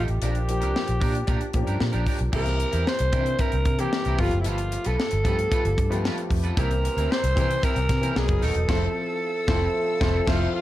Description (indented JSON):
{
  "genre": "polished 1980s jazz-funk pop",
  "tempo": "113 BPM",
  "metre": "4/4",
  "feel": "straight",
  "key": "unclear",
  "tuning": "A4 = 440 Hz",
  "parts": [
    { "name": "growling alto saxophone", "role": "melody", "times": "0.0-10.6 s", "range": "E4 to C5", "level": "-28 LUFS", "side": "equal", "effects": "none" },
    { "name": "warm grand piano", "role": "accompaniment", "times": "0.0-10.6 s", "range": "Eb3 to Bb4", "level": "-31 LUFS", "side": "left 2 dB", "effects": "lush chorus" },
    { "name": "electric guitar at the edge of break-up", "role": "riff", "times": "0.0-10.5 s", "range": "C4 to B4", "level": "-34 LUFS", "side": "right 3 dB", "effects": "lush chorus" },
    { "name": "vintage muted fingered electric bass", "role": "bass", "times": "0.0-10.5 s", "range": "D#1 to C3", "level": "-25 LUFS", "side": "equal", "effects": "none" },
    { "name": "tight funk drum kit", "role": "drums", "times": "0.1-10.4 s", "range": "crash cymbal, hi-hat, kick drum, snare drum", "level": "-26 LUFS", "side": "equal", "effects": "none" },
    { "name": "rich studio string section", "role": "sustained chords", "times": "6.6-10.6 s", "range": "B3 to E6", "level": "-40 LUFS", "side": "left 4 dB", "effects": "none" },
    { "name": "warm horn section", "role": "second line", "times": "8.7-10.4 s", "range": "A3 to C5", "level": "-37 LUFS", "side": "right 2 dB", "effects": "none" }
  ],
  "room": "light reverb, small room ambience",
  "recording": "dark, warm production",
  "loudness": "-21 LUFS",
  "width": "side -14 dB against mid",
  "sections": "0.0-2.3 A section; 2.3-10.6 B section",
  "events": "band accent 8.7-10.6",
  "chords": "0.2 Bb6; 2.3 C7; 4.2 G9; 6.6 C7; 8.2 Bmaj7; 8.7 Fmaj7"
}